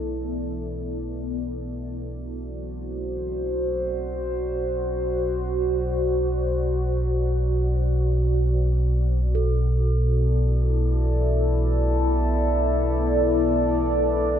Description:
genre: dark ambient drone.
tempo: free time.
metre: none.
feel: none.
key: B phrygian.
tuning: A4 = 440 Hz.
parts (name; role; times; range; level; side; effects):
dark analog pad; sustained chords; 0.0-14.4 s; B3 to D5; -25 LUFS; left 1 dB; chorus, phaser.
deep rumbling drone; drone; 0.0-14.4 s; B1 to B2; -24 LUFS; equal; built-in reverb, wide subtle chorus.
bronze singing bowl; texture; 0.0-14.4 s; A4; -34 LUFS; right 4 dB; none.
room: moderate huge ambient reverb, RT60 7.5 s.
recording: dark, warm production.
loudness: -21 LUFS.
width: side -9 dB against mid.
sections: 0.0-14.4 A section.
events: filter sweep on synth drone 0.0-14.4.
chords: 0.0 Bm7; 2.0 D; 9.4 Bm7.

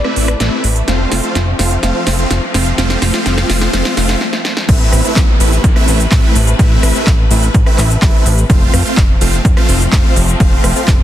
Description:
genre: EDM, festival progressive house.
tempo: 126 BPM.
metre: 4/4.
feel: straight.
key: A minor.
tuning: A4 = 438 Hz.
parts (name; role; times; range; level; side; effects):
clear symphonic string section; sustained chords; 0.0-11.0 s; C3 to B4; -24 LUFS; left 2 dB; sidechain pumping, low-pass filter.
supersaw chords; riff; 0.0-10.9 s; A3 to F5; -17 LUFS; right 1 dB; phaser, sidechain pumping, low-pass filter, tape echo.
big-room dance drum kit; drums; 0.0-11.0 s; crash cymbal, handclaps, hi-hat, rim click, shaker, snare drum; -19 LUFS; right 1 dB; overdrive, high-pass filter on hats, high-pass filter on snare, high-pass filter on cymbals, high-pass filter on perc, high-pass filter on room.
riser and downlifter; sound effects; 0.6-8.5 s; none; -26 LUFS; left 1 dB; none.
fat analog bass; bass; 0.2-11.0 s; F1 to A1; -15 LUFS; equal; sidechain pumping.
electronic kick drum; drums; 4.7-11.0 s; none; -11 LUFS; equal; overdrive.
room: digital ambience.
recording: dense, heavily limited modern master.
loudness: -10 LUFS.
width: side -12 dB against mid.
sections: 0.0-4.7 A section; 4.7-11.0 B section.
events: build-up 0.0-4.7; drum fill 0.0-4.2, 4.2-4.7; break 4.2-4.7; drop 4.7-11.0.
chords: 0.0 Amadd9; 0.9 F; 4.7 Amadd9; 8.5 F.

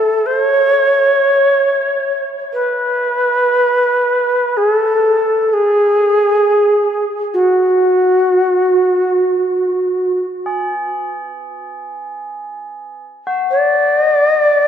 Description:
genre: world meditative, free-time meditation music.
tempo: free time.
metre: none.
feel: none.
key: unclear.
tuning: A4 = 439 Hz.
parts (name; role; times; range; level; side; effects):
breathy low Native American-style wooden flute; melody; 0.0-14.7 s; F#4 to D5; -12 LUFS; equal; tape echo.
tubular bells; texture; 0.0-14.7 s; E4 to G#4; -24 LUFS; left 2 dB; stereo widening.
room: wet church reverb, RT60 3.0 s.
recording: none.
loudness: -12 LUFS.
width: side -9 dB against mid.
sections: 0.0-12.6 A section; 12.6-14.7 A section.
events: none.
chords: none.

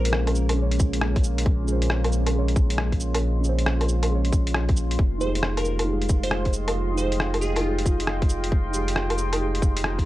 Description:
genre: future garage.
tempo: 136 BPM.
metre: 4/4.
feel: swing 65% on 16ths.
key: F minor.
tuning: A4 = 442 Hz.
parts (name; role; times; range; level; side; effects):
glassy wavetable pluck; melody; 0.0-0.3, 5.2-8.0 s; F4 to C5; -31 LUFS; right 1 dB; chorus, vintage 12-bit sampler grit, tape echo.
muted felt-like synth keys; accompaniment; 0.0-10.1 s; Db4 to Db5; -31 LUFS; right 3 dB; chorus, vintage 12-bit sampler grit, sidechain pumping, analog delay.
deep dark ambient pad; sustained chords; 0.0-10.1 s; Ab3 to C6; -30 LUFS; equal; chorus, built-in reverb, sidechain pumping.
soft dub sub bass; bass; 0.0-10.1 s; F1 to Bb1; -25 LUFS; equal; sidechain pumping.
lo-fi sampler-style drum kit; drums; 0.1-10.1 s; cabasa, hi-hat, rim click, woodblock; -28 LUFS; equal; none.
electronic kick drum; drums; 0.8-10.0 s; none; -21 LUFS; equal; none.
room: little or no reverb.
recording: dry, gritty hardware recording, cassette tape.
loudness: -21 LUFS.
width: side -16 dB against mid.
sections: 0.0-10.1 A section.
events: none.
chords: 0.0 Bbm7; 5.0 Fm9.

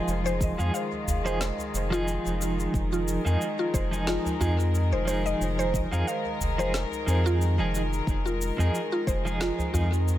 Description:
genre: organic downtempo.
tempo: 90 BPM.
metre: 4/4.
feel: swing 55% on 16ths.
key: F minor.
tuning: A4 = 438 Hz.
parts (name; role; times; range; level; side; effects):
clean electric guitar; accompaniment; 0.0-9.9 s; F3 to Ab4; -32 LUFS; right 2 dB; tremolo, sidechain pumping, analog delay.
warm studio string section; sustained chords; 0.0-10.2 s; Eb3 to Bb4; -32 LUFS; left 2 dB; sidechain pumping.
mallet-like synth pluck; arpeggios; 0.0-9.8 s; F4 to F5; -32 LUFS; equal; chorus, analog delay.
round analog bass; bass; 0.1-10.2 s; F1 to F2; -27 LUFS; equal; sidechain pumping.
electronic shaker and snare drum; drums; 0.1-10.2 s; none; -37 LUFS; equal; analog delay.
electronic kick drum; drums; 0.4-9.2 s; none; -29 LUFS; equal; none.
udu; percussion; 0.4-9.9 s; none; -35 LUFS; equal; analog delay.
room: light reverb, digital ambience.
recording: echo-heavy mix.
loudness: -24 LUFS.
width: side -13 dB against mid.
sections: 0.0-10.2 A section.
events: none.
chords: 0.0 Fm7.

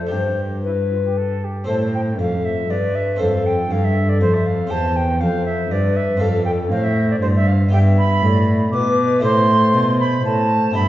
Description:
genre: classical, baroque-style sonata movement with continuo.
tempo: 119 BPM.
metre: 3/4.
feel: straight.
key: unclear.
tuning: A4 = 440 Hz.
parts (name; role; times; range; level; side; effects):
mellow tenor recorder; melody; 0.0-10.9 s; A4 to E5; -24 LUFS; left 4 dB; none.
silver concert flute; second line; 0.0-10.9 s; E4 to D6; -22 LUFS; right 2 dB; none.
harpsichord; accompaniment; 0.0-10.9 s; E2 to D5; -24 LUFS; equal; none.
rich cello; bass; 0.0-10.9 s; E2 to B2; -18 LUFS; equal; none.
room: wet recital hall reverb, RT60 1.7 s.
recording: heard from further back in the room, nothing above 7.8 kHz.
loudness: -16 LUFS.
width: side -14 dB against mid.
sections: 0.0-1.7 A section; 1.7-10.9 B section.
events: none.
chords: 0.1 G; 1.7 Am; 4.7 C/E; 6.2 Dm7/F; 7.7 G; 9.2 Am.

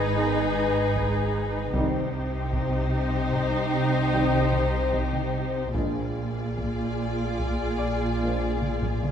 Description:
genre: cinematic, suspense film score.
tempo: 74 BPM.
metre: 5/4.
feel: straight.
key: unclear.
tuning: A4 = 438 Hz.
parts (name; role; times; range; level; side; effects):
rich studio violin section; melody; 0.0-9.1 s; Cb5 to D5; -32 LUFS; left 5 dB; none.
warm studio violin section; second line; 0.0-9.1 s; G4 to Ab4; -33 LUFS; left 2 dB; none.
rich studio viola section; accompaniment; 0.0-9.1 s; Eb4 to F4; -31 LUFS; right 1 dB; none.
warm studio cello section; bass; 0.0-9.1 s; Ab2 to C3; -31 LUFS; equal; none.
warm studio double bass section; bass; 0.0-9.1 s; Ab1 to C2; -30 LUFS; right 3 dB; none.
deep rumbling drone; drone; 0.0-9.1 s; Ab1 to C2; -34 LUFS; equal; built-in reverb.
clear grand piano; texture; 0.0-9.1 s; G4 to Ab6; -40 LUFS; left 2 dB; none.
dark French horn section; sustained chords; 0.2-8.5 s; Bb3 to Eb4; -34 LUFS; left 2 dB; none.
mellow trombone section; sustained chords; 0.2-8.5 s; Eb3 to Ab3; -34 LUFS; right 3 dB; none.
taiko ensemble; drums; 1.0-9.1 s; none; -33 LUFS; equal; none.
room: moderate scoring stage reverb, RT60 1.9 s.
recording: minimal, uncompressed stereo recording.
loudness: -23 LUFS.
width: side -8 dB against mid.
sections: 0.0-9.1 A section.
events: drum fill 8.8.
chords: 0.0 Abm; 1.7 Cm; 5.7 Bb7.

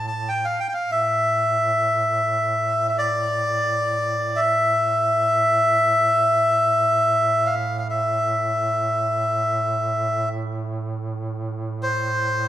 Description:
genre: caucasian folk, Caucasian lament.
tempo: free time.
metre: none.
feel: none.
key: A minor.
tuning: A4 = 441 Hz.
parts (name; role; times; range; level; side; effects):
melodica; melody; 0.0-12.5 s; C5 to A5; -19 LUFS; left 1 dB; none.
clear duduk; drone; 0.0-12.5 s; A2; -29 LUFS; right 3 dB; none.
room: moderate recital hall reverb, RT60 1.6 s.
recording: recorded in a church or concert hall.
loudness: -19 LUFS.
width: side -12 dB against mid.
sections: 0.0-12.5 A section.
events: slowing down 9.5-12.5.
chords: none.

